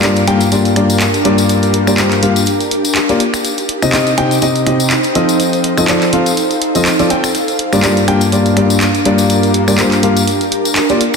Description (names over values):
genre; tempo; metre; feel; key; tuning
piano house; 123 BPM; 4/4; swing 55% on 16ths; G minor; A4 = 440 Hz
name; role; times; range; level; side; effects
warm upright piano; riff; 0.0-11.0 s; G2 to G5; -13 LUFS; left 2 dB; tape echo
punchy analog drum machine; drums; 0.0-11.2 s; finger snaps, handclaps, hi-hat; -18 LUFS; right 1 dB; soft clipping on snare
tambourine; percussion; 0.0-11.2 s; none; -23 LUFS; left 6 dB; none
ethereal airy pad; texture; 0.0-11.2 s; D4 to G5; -17 LUFS; right 1 dB; ensemble chorus, built-in reverb
room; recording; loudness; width
moderate lush hall reverb, RT60 2.5 s; dense, heavily limited modern master; -10 LUFS; side -5 dB against mid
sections
0.0-11.2 A section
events
none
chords
0.0 Gm7; 3.2 Cm; 5.2 F7; 7.3 Gm7